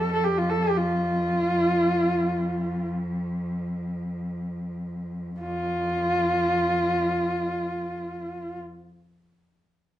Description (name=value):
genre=mongolian traditional, Mongolian folk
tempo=free time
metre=none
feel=none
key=F gong mode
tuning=A4 = 440 Hz
part: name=warm horsehead fiddle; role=melody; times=0.0-8.6 s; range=F4 to A4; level=-24 LUFS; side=equal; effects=none
part: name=warm cello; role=drone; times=0.0-8.6 s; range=F2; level=-29 LUFS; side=equal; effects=none
room=wet large studio reverb, RT60 0.9 s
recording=band playing live in one room, nothing above 10.9 kHz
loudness=-24 LUFS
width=side -12 dB against mid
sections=0.0-5.4 A section; 5.4-10.0 B section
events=slowing down 0.0-5.4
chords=none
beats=free time